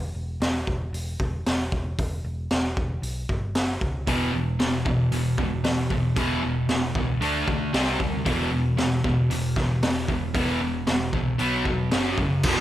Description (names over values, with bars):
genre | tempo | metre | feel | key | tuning
garage rock duo or trio | 115 BPM | 4/4 | straight | E minor | A4 = 440 Hz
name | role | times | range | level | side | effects
hollow-body short-scale picked electric bass | bass | 0.0-12.6 s | E1 to D2 | -31 LUFS | equal | none
raw garage drum kit | drums | 0.4-12.6 s | crash cymbal, hi-hat, kick drum, snare drum | -26 LUFS | equal | none
fuzz guitar | riff | 4.1-12.6 s | E2 to D4 | -24 LUFS | equal | distortion
room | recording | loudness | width
light reverb, studio reverb | none | -22 LUFS | side -13 dB against mid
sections
0.0-12.5 A section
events
none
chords
0.0 N.C.; 3.0 G; 3.6 F#5; 4.1 E5; 7.2 D5; 7.7 C5; 8.3 E5; 11.4 B5; 11.9 F#5